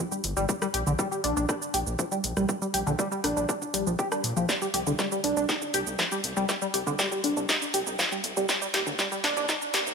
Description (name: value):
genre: melodic techno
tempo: 120 BPM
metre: 4/4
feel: straight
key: unclear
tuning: A4 = 440 Hz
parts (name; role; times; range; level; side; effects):
- tight sequenced synth; arpeggios; 0.0-9.8 s; D3 to G4; -28 LUFS; equal; chorus, sidechain pumping, digital delay
- punchy analog drum machine; drums; 0.1-9.9 s; hi-hat, rim click, shaker, snare drum, toms; -29 LUFS; equal; overdrive, high-pass filter on toms, high-pass filter on perc, high-pass filter on hats, high-pass filter on snare
- gritty driven synth bass; bass; 0.2-9.9 s; G1 to Bb2; -34 LUFS; equal; sidechain pumping
- electronic kick drum; drums; 0.5-9.6 s; none; -33 LUFS; left 1 dB; high-pass filter on kick, high-pass filter on room
room: moderate lush hall reverb, RT60 2.7 s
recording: high-pass filter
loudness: -25 LUFS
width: side -5 dB against mid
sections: 0.0-9.9 A section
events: build-up 0.0-9.9; filter sweep 0.0-9.9; drum fill 4.5-9.9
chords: 0.5 Bb; 4.5 Csus2; 8.5 Eb